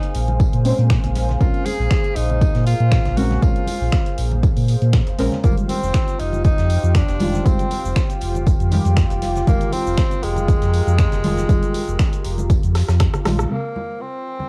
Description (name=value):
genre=deep house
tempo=119 BPM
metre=4/4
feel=swing 53% on 16ths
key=Bb minor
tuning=A4 = 439 Hz
part: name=warm tenor saxophone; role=melody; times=0.0-14.5 s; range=Ab3 to Ab4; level=-28 LUFS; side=equal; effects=cassette tape
part: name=warm analog pad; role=sustained chords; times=0.0-14.5 s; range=Bb3 to F5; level=-36 LUFS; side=equal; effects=lush chorus, sidechain pumping, cassette tape
part: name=crisp fusion drum kit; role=drums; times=0.0-13.4 s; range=hi-hat, snare drum, tambourine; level=-43 LUFS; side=equal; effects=high-pass filter on hats, small room ambience, cassette tape, high-pass filter on snare, high-pass filter on perc, high-pass filter on room
part: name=deep house drum kit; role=drums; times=0.0-14.5 s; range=cabasa, crash cymbal, finger snaps, hi-hat, rim click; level=-33 LUFS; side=equal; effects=low-pass filter on hats, small room ambience, cassette tape, low-pass filter on snare, low-pass filter on perc, low-pass filter on cymbals
part: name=warbly tape-like pad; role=texture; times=0.0-14.5 s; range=F4 to C6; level=-33 LUFS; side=equal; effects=chorus, built-in reverb, sidechain pumping, cassette tape
part: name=sub bass with octave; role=bass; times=0.1-13.5 s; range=F1 to Bb2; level=-22 LUFS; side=equal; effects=sidechain pumping
part: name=congas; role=percussion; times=0.3-14.5 s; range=none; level=-34 LUFS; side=equal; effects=none
part: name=electronic kick drum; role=drums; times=0.4-13.1 s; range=none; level=-20 LUFS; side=equal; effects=overdrive, small room ambience, cassette tape
part: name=deep mellow chord stab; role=stabs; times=0.6-14.5 s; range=Db3 to C5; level=-27 LUFS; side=equal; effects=chorus, sidechain pumping, cassette tape, analog delay
room=small room ambience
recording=home recording on cassette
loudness=-18 LUFS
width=mono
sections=0.0-13.5 A section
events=drum fill 12.8-13.5; band accent 13.4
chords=0.0 Bbm9; 5.4 Fm9; 13.5 Bbm9